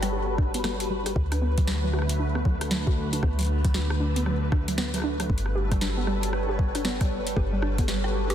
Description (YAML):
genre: IDM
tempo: 116 BPM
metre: 4/4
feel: swing 62% on 16ths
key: G lydian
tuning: A4 = 440 Hz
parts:
  - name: soft string machine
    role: sustained chords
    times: 0.0-8.3 s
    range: D3 to C#5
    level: -30 LUFS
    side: equal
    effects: phaser, ensemble chorus, sidechain pumping
  - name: warbly dusty pluck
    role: arpeggios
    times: 0.0-8.3 s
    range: F#3 to G4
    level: -32 LUFS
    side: right 2 dB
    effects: chorus, digital delay
  - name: woody FM bass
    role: bass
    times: 0.0-8.3 s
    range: G1 to D2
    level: -28 LUFS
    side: equal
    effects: none
  - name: booming analog drum machine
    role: drums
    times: 0.0-8.3 s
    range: hi-hat, rim click, snare drum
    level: -33 LUFS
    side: left 1 dB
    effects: soft clipping on snare, ping-pong delay
  - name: pulsing gated texture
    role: texture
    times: 0.0-8.3 s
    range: B4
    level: -37 LUFS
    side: right 1 dB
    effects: chorus, built-in reverb
  - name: electronic kick drum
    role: drums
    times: 0.4-7.9 s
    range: none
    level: -24 LUFS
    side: equal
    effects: none
room: light reverb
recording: dense, heavily limited modern master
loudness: -23 LUFS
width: side -10 dB against mid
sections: 0.0-8.3 A section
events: none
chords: 0.0 Gmaj9#11; 1.2 D6; 5.3 Gmaj9#11